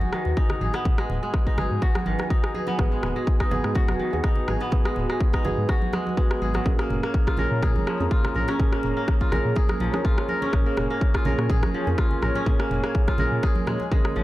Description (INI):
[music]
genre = afro house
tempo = 124 BPM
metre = 4/4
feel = swing 54% on 16ths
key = G# dorian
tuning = A4 = 440 Hz
[part]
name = dark analog pad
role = sustained chords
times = 0.0-14.2 s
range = F#4 to A#5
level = -33 LUFS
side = equal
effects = chorus, sidechain pumping
[part]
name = kora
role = arpeggios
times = 0.0-14.2 s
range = D#3 to A#4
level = -29 LUFS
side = left 1 dB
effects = sidechain pumping, tape echo
[part]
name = dark detuned saw bass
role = bass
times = 0.0-14.2 s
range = D#1 to A#2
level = -28 LUFS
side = equal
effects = sidechain pumping
[part]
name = congas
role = percussion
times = 0.0-14.2 s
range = none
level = -33 LUFS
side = right 3 dB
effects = none
[part]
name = afro-pop drum kit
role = drums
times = 0.1-14.1 s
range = rim click, toms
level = -32 LUFS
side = equal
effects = none
[part]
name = electronic kick drum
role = drums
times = 0.4-14.0 s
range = none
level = -22 LUFS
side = equal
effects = none
[part]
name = felt-muted upright piano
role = stabs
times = 2.8-14.2 s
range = A#3 to G#4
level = -29 LUFS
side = right 3 dB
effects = sidechain pumping, tape echo
[sound]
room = digital ambience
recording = dry, gritty hardware recording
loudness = -21 LUFS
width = side -16 dB against mid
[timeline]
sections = 0.0-14.2 A section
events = drum fill 13.7-14.2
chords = 0.0 G#m7; 6.7 A#m7